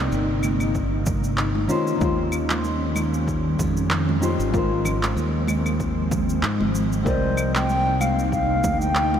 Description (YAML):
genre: sunset chillout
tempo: 95 BPM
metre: 4/4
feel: swing 56% on 16ths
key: C minor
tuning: A4 = 440 Hz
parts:
  - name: nylon-string guitar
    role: accompaniment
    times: 0.0-9.2 s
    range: Eb3 to Eb5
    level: -27 LUFS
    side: moving between left 5 dB and right 1 dB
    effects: auto-pan, ping-pong delay
  - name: ethereal airy pad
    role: sustained chords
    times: 0.0-9.2 s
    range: C3 to Eb4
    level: -27 LUFS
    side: equal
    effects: ensemble chorus, built-in reverb
  - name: modern bright fingered electric bass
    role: bass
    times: 0.0-9.2 s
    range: G1 to Ab2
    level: -25 LUFS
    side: equal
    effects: none
  - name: electronic shaker, claves and handclaps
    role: drums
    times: 0.1-9.1 s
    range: none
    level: -30 LUFS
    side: right 1 dB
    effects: overdrive
  - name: congas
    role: percussion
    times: 0.4-9.2 s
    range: none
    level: -31 LUFS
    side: right 3 dB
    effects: none
  - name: electronic kick drum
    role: drums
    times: 0.8-8.8 s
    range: none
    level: -28 LUFS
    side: equal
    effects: overdrive
  - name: baroque flute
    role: melody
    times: 7.1-9.2 s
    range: C5 to G5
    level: -23 LUFS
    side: left 1 dB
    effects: analog delay
room: moderate huge ambient reverb, RT60 9.1 s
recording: dreamy mix soaked in reverb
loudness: -20 LUFS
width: side -8 dB against mid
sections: 0.0-9.2 A section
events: none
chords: 0.0 Cm9; 1.7 Eb13; 4.5 Ab69; 7.1 Cm9